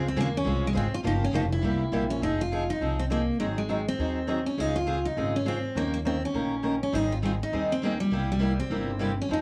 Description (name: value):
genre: acoustic string swing (jazz manouche)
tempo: 204 BPM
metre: 4/4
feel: swing 59% on 8ths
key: F minor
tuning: A4 = 441 Hz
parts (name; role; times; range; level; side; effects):
- picked steel-string acoustic guitar; melody; 0.0-9.4 s; G3 to F4; -31 LUFS; equal; cassette tape
- picked steel-string acoustic guitar; accompaniment; 0.0-9.4 s; C3 to Bb4; -33 LUFS; equal; cassette tape
- picked steel-string acoustic guitar; accompaniment; 0.0-2.0, 6.9-9.4 s; C3 to Ab4; -36 LUFS; equal; cassette tape
- upright bass; bass; 0.0-9.4 s; F1 to F2; -34 LUFS; equal; none
room: light reverb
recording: home recording on cassette, small room ambience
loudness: -28 LUFS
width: mono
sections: 0.0-2.2 A section; 2.2-9.4 B section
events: none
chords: 0.0 Dbmaj9; 1.0 Gm7b5; 1.6 C7; 2.2 Fm7; 3.4 Ab7; 4.6 Dbmaj7; 5.8 Eb7; 6.9 Abmaj7; 8.1 C7